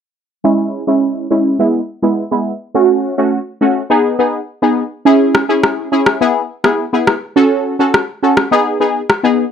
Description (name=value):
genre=dancehall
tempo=104 BPM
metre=4/4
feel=straight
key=C# minor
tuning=A4 = 437 Hz
part: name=synth brass stab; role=accompaniment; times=0.4-9.4 s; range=G#3 to A4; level=-12 LUFS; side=equal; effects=chorus, phaser
part: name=electronic rim click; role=drums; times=5.3-9.2 s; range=none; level=-13 LUFS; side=left 1 dB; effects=none
room=moderate studio reverb, RT60 0.6 s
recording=low-pass filter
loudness=-12 LUFS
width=side -8 dB against mid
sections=0.4-5.1 A section; 5.1-9.5 B section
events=filter sweep 0.4-5.1; kick muted 5.1-9.5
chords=0.4 C#m; 1.6 E; 2.7 F#m; 3.9 G#m; 5.1 C#m; 6.2 E; 7.4 F#m; 8.5 G#m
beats=| 0.44 1.02 1.59 2.17 | 2.75 3.33 3.90 4.48 | 5.06 5.63 6.21 6.79 | 7.36 7.94 8.52 9.10